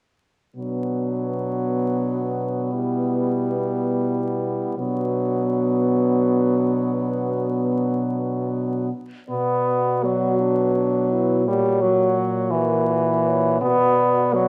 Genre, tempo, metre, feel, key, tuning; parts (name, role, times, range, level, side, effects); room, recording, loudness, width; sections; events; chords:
classical, lyrical piece for horn quartet; 43-61 BPM (dotted quarters); 6/8; rubato; B minor; A4 = 441 Hz
mellow French horn; melody; 0.6-14.5 s; D4 to D5; -32 LUFS; equal
clear French horn; second line; 0.6-14.5 s; B3 to F#4; -31 LUFS; equal
clear French horn; accompaniment; 0.6-14.5 s; E3 to B3; -25 LUFS; equal
mellow French horn; bass; 0.6-14.5 s; A#2 to B2; -27 LUFS; equal
moderate scoring stage reverb, RT60 1.5 s; dark, warm production, vinyl crackle; -22 LUFS; mono
0.6-9.3 A section; 9.3-14.5 B section
0.6 Bm; 2.7 Em/B; 4.8 Bm; 11.5 F#7/A#; 13.6 Bm